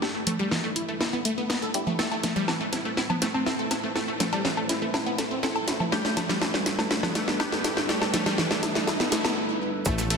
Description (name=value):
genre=melodic techno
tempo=122 BPM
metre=4/4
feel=straight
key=unclear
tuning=A4 = 441 Hz
part: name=dark analog pad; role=sustained chords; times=0.0-10.2 s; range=G3 to B5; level=-36 LUFS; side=right 1 dB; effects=chorus, sidechain pumping
part: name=wide unison pluck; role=arpeggios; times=0.0-10.2 s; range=E3 to A4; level=-28 LUFS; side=equal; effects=cassette tape, sidechain pumping, digital delay
part: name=filtered dub chord stab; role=stabs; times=0.0-10.2 s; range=G3 to A4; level=-34 LUFS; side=equal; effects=phaser, sidechain pumping, digital delay
part: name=techno drum kit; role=drums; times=0.0-10.2 s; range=congas, hi-hat, snare drum, woodblock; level=-27 LUFS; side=equal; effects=none
part: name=riser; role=sound effects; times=4.8-9.4 s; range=none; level=-36 LUFS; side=right 1 dB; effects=none
part: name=fat analog bass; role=bass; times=9.9-10.2 s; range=A1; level=-28 LUFS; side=equal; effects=tube saturation, sidechain pumping
part: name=breakbeat sampler-style drum kit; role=drums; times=9.9-10.2 s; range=hi-hat, snare drum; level=-37 LUFS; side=left 1 dB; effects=none
part: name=electronic kick drum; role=drums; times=9.9-10.0 s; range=none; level=-28 LUFS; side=equal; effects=distortion
part: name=maracas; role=percussion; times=9.9-10.1 s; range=none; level=-33 LUFS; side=right 3 dB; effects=none
room=wet concert hall reverb, RT60 2.2 s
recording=dense, heavily limited modern master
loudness=-24 LUFS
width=side -5 dB against mid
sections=0.0-9.9 A section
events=build-up 0.0-9.9; drum fill 0.0-9.4; filter sweep on analog synth pad 0.0-9.9; break 9.4-9.9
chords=0.0 Gadd9; 2.0 Amadd9; 5.9 Gadd9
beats=| 0.02 0.51 1.01 1.50 | 1.99 2.48 2.97 3.46 | 3.96 4.45 4.94 5.43 | 5.92 6.42 6.91 7.40 | 7.89 8.38 8.88 9.37 | 9.86